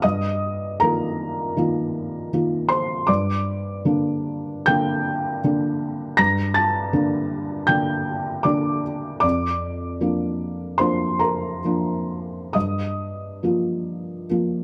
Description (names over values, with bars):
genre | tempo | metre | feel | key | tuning
neoclassical minimalist piano | 65-82 BPM | 4/4 | rubato | G minor | A4 = 440 Hz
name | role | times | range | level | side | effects
felt-muted upright piano | solo | 0.0-14.6 s | F2 to Bb6 | -23 LUFS | equal | none
room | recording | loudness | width
moderate spring reverb, RT60 1.4 s | none | -23 LUFS | mono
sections
0.0-14.6 A section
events
none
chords
0.0 Ebadd9/G; 3.1 Gm; 9.2 Bb/F; 12.5 Ebadd9/G